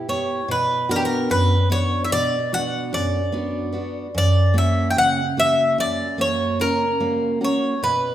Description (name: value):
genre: greek folk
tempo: 147 BPM (eighths)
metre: 9/8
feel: straight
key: unclear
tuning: A4 = 439 Hz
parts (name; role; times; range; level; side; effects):
- Greek bouzouki; melody; 0.0-8.1 s; G4 to G5; -20 LUFS; equal; none
- picked steel-string acoustic guitar; accompaniment; 0.0-8.1 s; F#2 to G4; -22 LUFS; right 1 dB; none
room: wet recital hall reverb, RT60 1.4 s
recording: recorded in a church or concert hall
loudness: -18 LUFS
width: side -12 dB against mid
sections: 0.5-8.1 A section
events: none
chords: 0.5 Bm; 4.1 F#